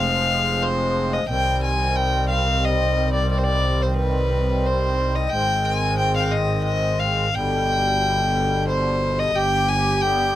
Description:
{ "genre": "klezmer", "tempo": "89 BPM", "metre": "3/4", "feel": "straight", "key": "G phrygian dominant", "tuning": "A4 = 440 Hz", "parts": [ { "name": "warm violin", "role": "melody", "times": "0.0-10.4 s", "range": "B4 to Ab5", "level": "-21 LUFS", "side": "left 1 dB", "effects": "none" }, { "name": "musette accordion", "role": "accompaniment", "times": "0.0-10.4 s", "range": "B2 to C4", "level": "-26 LUFS", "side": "left 1 dB", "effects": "none" }, { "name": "dark double bass", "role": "bass", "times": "0.0-10.2 s", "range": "F1 to C2", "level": "-23 LUFS", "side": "right 1 dB", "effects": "none" }, { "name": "accordion", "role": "second line", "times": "9.3-10.4 s", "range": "G4", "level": "-26 LUFS", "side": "equal", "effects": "light tremolo tuning" } ], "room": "light reverb", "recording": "close, detailed microphones", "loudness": "-18 LUFS", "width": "side -13 dB against mid", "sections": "0.0-9.3 A section; 9.3-10.4 A section", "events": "none", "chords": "0.0 Fm; 1.3 Cm; 5.3 Ab; 7.3 G" }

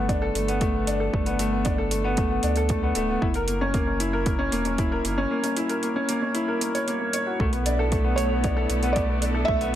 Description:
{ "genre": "piano and strings electronica", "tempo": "115 BPM", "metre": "4/4", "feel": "straight", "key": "unclear", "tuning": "A4 = 439 Hz", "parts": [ { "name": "warm upright piano", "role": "riff", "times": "0.0-9.8 s", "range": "A3 to C#5", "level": "-24 LUFS", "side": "left 1 dB", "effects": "ping-pong delay" }, { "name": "warm sub bass", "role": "bass", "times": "0.0-9.8 s", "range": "D1 to D2", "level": "-28 LUFS", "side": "equal", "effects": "sidechain pumping" }, { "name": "electronic hi-hat", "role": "drums", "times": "0.1-9.7 s", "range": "none", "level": "-32 LUFS", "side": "right 2 dB", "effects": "overdrive" }, { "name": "electronic kick drum", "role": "drums", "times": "0.1-9.6 s", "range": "none", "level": "-27 LUFS", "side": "equal", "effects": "overdrive" }, { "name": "rich studio string section", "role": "sustained chords", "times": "7.4-9.8 s", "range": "B3 to A4", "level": "-34 LUFS", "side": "right 4 dB", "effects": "none" }, { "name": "felt-muted upright piano", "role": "melody", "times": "8.2-9.8 s", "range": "C#5 to E5", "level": "-27 LUFS", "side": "right 2 dB", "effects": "none" } ], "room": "light reverb, small room ambience", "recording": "none", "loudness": "-22 LUFS", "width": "side -11 dB against mid", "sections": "0.0-9.8 A section", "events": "none", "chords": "0.0 Gadd9; 3.2 F#7; 7.4 Bm7" }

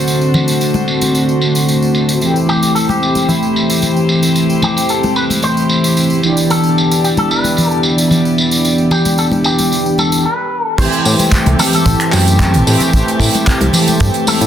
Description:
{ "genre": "nu-disco, nu disco", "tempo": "112 BPM", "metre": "4/4", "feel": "straight", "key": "A dorian", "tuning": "A4 = 440 Hz", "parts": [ { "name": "mellow synth brass", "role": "accompaniment", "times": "0.0-14.5 s", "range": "D3 to G4", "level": "-14 LUFS", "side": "equal", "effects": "chorus" }, { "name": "warm chamber string section", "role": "sustained chords", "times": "0.0-14.5 s", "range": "A3 to A5", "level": "-21 LUFS", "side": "equal", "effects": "sidechain pumping" }, { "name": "tight funk drum kit", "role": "drums", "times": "0.1-14.5 s", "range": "crash cymbal, finger snaps, handclaps, hi-hat, tambourine", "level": "-19 LUFS", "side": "right 1 dB", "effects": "low-pass filter on cymbals, small room ambience, low-pass filter on hats, low-pass filter on perc, low-pass filter on snare, low-pass filter on room" }, { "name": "tambourine and congas", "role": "percussion", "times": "0.1-14.5 s", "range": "none", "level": "-20 LUFS", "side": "left 1 dB", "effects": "none" }, { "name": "electric guitar with an envelope filter", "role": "melody", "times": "2.5-14.5 s", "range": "E4 to C5", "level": "-19 LUFS", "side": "left 2 dB", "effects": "digital delay" }, { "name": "chorused synth bass", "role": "bass", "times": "10.8-14.5 s", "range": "A1 to A2", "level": "-13 LUFS", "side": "equal", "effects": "none" }, { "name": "kick drum", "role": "drums", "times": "10.8-14.1 s", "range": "none", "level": "-15 LUFS", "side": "equal", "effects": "small room ambience" } ], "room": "moderate plate reverb, RT60 1.5 s", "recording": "dense, heavily limited modern master", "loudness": "-11 LUFS", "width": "side -10 dB against mid", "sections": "0.0-10.8 A section; 10.8-14.5 B section", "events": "break 10.3-10.8; drop 10.8-14.5", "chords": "0.0 D7; 2.2 Am7; 6.2 Em7; 10.8 Am7" }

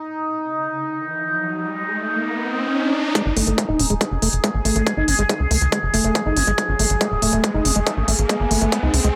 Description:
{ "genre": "psychedelic trance", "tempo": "140 BPM", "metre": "4/4", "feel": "straight", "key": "unclear", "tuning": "A4 = 442 Hz", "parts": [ { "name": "overtone-sweeping drone", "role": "sustained chords", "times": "0.0-9.2 s", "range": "D#4 to G#4", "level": "-26 LUFS", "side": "equal", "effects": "chorus, built-in reverb, phaser, sidechain pumping" }, { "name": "riser", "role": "sound effects", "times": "0.8-9.2 s", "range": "none", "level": "-30 LUFS", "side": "equal", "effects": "none" }, { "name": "liquid acid bass", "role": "riff", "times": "3.2-9.1 s", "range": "G#3 to D#4", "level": "-25 LUFS", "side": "equal", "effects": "chorus, sidechain pumping, digital delay" }, { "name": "electronic hi-hat", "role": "drums", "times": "3.2-9.1 s", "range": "none", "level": "-25 LUFS", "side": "equal", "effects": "none" }, { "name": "electronic kick drum", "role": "drums", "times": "3.2-8.8 s", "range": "none", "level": "-26 LUFS", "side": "equal", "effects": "distortion, high-pass filter on kick, high-pass filter on room" }, { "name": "tight sequencer bass", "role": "bass", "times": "3.3-9.1 s", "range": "D#1 to C#2", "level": "-23 LUFS", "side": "equal", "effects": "none" } ], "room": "light reverb, digital ambience", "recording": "none", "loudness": "-20 LUFS", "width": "mono", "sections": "0.0-3.2 A section; 3.2-9.2 B section", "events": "riser 0.8-3.2, 3.2-9.2; build-up 3.2-9.2; filter sweep on acid bass 3.2-9.2", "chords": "0.0 N.C.; 3.2 G#5" }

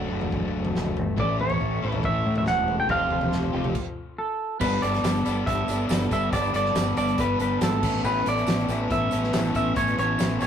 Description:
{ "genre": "indie rock", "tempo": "140 BPM", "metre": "4/4", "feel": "straight", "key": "unclear", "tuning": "A4 = 439 Hz", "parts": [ { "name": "clean electric guitar", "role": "melody", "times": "0.0-10.5 s", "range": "A4 to G5", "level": "-26 LUFS", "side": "right 1 dB", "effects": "none" }, { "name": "overdriven electric guitar", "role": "riff", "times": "0.0-10.5 s", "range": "G2 to F#4", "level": "-30 LUFS", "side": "left 5 dB", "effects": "spring reverb" }, { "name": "twelve-string electric guitar", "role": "riff", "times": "0.0-10.5 s", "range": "E3 to A4", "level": "-30 LUFS", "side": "right 2 dB", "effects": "none" }, { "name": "growling fingered electric bass", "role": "bass", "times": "0.0-10.5 s", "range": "E1 to A2", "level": "-29 LUFS", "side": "equal", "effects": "overdrive" }, { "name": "loose indie drum kit", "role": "drums", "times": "0.2-10.5 s", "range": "crash cymbal, hi-hat, kick drum, snare drum, toms", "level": "-30 LUFS", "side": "equal", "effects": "none" }, { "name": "hollow soft pad", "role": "sustained chords", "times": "1.2-10.5 s", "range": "E4 to C#6", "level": "-36 LUFS", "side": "equal", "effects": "chorus" }, { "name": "tambourine", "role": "percussion", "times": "4.6-10.5 s", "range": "none", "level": "-44 LUFS", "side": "right 6 dB", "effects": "none" } ], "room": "moderate small room reverb, RT60 0.5 s", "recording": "rough rehearsal-room recording", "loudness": "-22 LUFS", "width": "side -8 dB against mid", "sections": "0.0-4.6 A section; 4.6-10.5 B section", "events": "stop 3.8-4.6", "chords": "0.0 D/F#; 1.2 A; 2.9 Fadd9; 4.6 Gadd9; 7.8 Aadd9" }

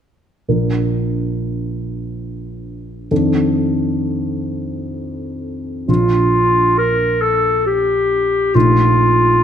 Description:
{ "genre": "classical, romantic duo for clarinet and grand piano", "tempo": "45 BPM (dotted quarters)", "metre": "6/8", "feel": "uneven beats, rubato", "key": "Bb major", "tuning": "A4 = 440 Hz", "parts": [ { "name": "dark grand piano", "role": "accompaniment", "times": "0.5-9.4 s", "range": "Bb1 to Bb4", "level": "-18 LUFS", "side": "equal", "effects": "none" }, { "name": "warm clarinet", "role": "melody", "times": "5.9-9.4 s", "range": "F4 to Bb4", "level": "-14 LUFS", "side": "equal", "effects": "none" } ], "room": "moderate scoring stage reverb, RT60 1.5 s", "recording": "none", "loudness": "-14 LUFS", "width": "side -9 dB against mid", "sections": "0.5-5.9 A section; 5.9-9.4 B section", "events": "none", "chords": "0.5 Bb; 3.1 F6; 5.9 Bb; 8.6 F7/Bb" }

